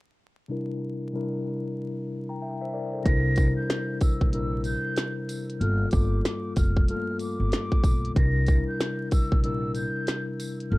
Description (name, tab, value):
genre	hip hop, boom-bap hip-hop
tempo	94 BPM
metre	4/4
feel	swing 61% on 16ths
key	unclear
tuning	A4 = 441 Hz
part	mellow tine electric piano	accompaniment	0.5-10.8 s	G2 to Bb5	-30 LUFS	left 2 dB	medium stereo tremolo, cassette tape, high-pass filter, low-pass filter
part	breathy silver concert flute	melody	3.1-10.8 s	D6 to Bb6	-34 LUFS	equal	high-pass filter, low-pass filter, plate reverb, ping-pong delay
part	upright bass	bass	3.1-10.8 s	F1 to C2	-26 LUFS	equal	none
part	glitchy drum kit	drums	3.1-10.7 s	hi-hat, kick drum, snare drum	-24 LUFS	equal	none
part	tambourine	percussion	3.4-10.6 s	none	-46 LUFS	right 4 dB	none
room	little or no reverb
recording	dark, warm production, vinyl crackle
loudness	-24 LUFS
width	side -21 dB against mid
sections	0.5-3.1 A section; 3.1-10.8 B section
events	filter sweep on tine electric piano 0.5-3.1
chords	0.5 C7; 5.6 Gm9; 8.2 C7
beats	| 0.50 1.14 1.78 2.42 | 3.06 3.69 4.33 4.97 | 5.61 6.25 6.88 7.52 | 8.16 8.80 9.44 10.08 | 10.71